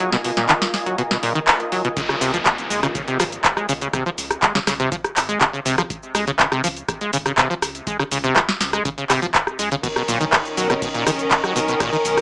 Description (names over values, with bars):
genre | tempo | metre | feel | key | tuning
acid house | 122 BPM | 4/4 | straight | Db mixolydian | A4 = 440 Hz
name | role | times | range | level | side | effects
acid bass, saw | riff | 0.0-12.0 s | Bb2 to Ab3 | -22 LUFS | equal | tube saturation, analog chorus, cassette tape, sidechain pumping, dub echo
booming analog drum machine | drums | 0.0-12.2 s | handclaps, hi-hat, ride cymbal, rim click, shaker, snare drum | -19 LUFS | equal | none
granular cloud pad | texture | 0.0-2.0 s | F4 to Ab5 | -28 LUFS | equal | built-in reverb, sidechain pumping
electronic kick drum | drums | 2.0-11.9 s | none | -33 LUFS | equal | none
downlifter | sound effects | 2.0-5.9 s | none | -29 LUFS | equal | none
round analog bass | bass | 2.2-12.2 s | Gb1 to Db2 | -36 LUFS | equal | sidechain pumping
clear symphonic string section | sustained chords | 9.8-12.2 s | Eb3 to Bb4 | -21 LUFS | equal | sidechain pumping
room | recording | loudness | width
moderate studio ambience, RT60 0.5 s | small speaker sound | -17 LUFS | side -24 dB against mid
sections
0.0-2.0 A section; 2.0-12.2 B section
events
break 0.0-2.0; band accent 1.5; drop 2.0-12.2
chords
0.0 Cbmaj7; 2.0 Db5; 9.8 Cbmaj9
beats
| 0.00 0.49 0.98 1.48 | 1.97 2.46 2.95 3.44 | 3.93 4.43 4.92 5.41 | 5.90 6.39 6.88 7.38 | 7.87 8.36 8.85 9.34 | 9.84 10.33 10.82 11.31 | 11.80